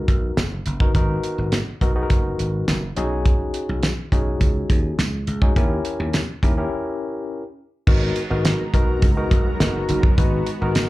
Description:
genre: early-eighties boogie funk.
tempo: 104 BPM.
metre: 4/4.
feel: straight.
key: G# minor.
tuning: A4 = 440 Hz.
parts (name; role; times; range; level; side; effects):
barky tine electric piano; accompaniment; 0.0-10.9 s; B3 to B4; -26 LUFS; left 2 dB; overdrive, auto-pan.
dry thumbed slap bass; bass; 0.1-10.8 s; F#1 to D#2; -23 LUFS; equal; none.
damped 70s drum kit; drums; 0.1-10.9 s; crash cymbal, hi-hat, kick drum, snare drum; -19 LUFS; equal; none.
tambourine; percussion; 0.4-10.9 s; none; -37 LUFS; right 4 dB; none.
lush unison pad; sustained chords; 7.9-10.9 s; G#3 to A#5; -30 LUFS; right 1 dB; chorus.
mellow synth brass; second line; 9.5-10.1 s; F#3 to A#4; -28 LUFS; right 3 dB; chorus, slapback echo.
room: light reverb.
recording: live gig heard through the venue's PA, club reverb.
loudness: -18 LUFS.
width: side -18 dB against mid.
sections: 0.0-7.9 A section; 7.9-10.9 B section.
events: break 6.7-7.9.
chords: 0.0 G#m9; 3.0 B69; 5.6 D#7b9; 7.9 G#m9.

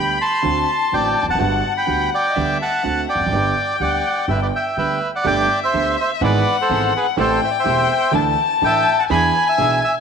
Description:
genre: tango.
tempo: 125 BPM.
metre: 4/4.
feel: rubato.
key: G major.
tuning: A4 = 440 Hz.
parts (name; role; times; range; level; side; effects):
bandoneon; melody; 0.0-9.9 s; G#4 to C6; -19 LUFS; right 2 dB; none.
dark violin; second line; 0.0-10.0 s; Eb5 to B5; -21 LUFS; left 9 dB; tape echo.
warm grand piano; accompaniment; 0.0-9.8 s; E1 to A4; -24 LUFS; right 7 dB; none.
upright bass; bass; 0.0-9.8 s; E1 to E2; -26 LUFS; equal; none.
rich chamber string section; stabs; 5.2-9.8 s; B3 to A4; -32 LUFS; right 7 dB; none.
room: moderate echo chamber reverb, RT60 1.7 s, studio ambience.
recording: 1960s-style stereo with parts hard left and right, vinyl crackle.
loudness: -16 LUFS.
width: side -6 dB against mid.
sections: 0.0-5.2 A section; 5.2-10.0 A section.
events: none.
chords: 0.4 D7; 1.4 Gmaj7; 2.4 G/D; 2.8 D7; 3.3 G; 5.2 Gadd9; 6.2 E/G#; 7.2 Am7; 8.1 Dsus2; 9.1 E7.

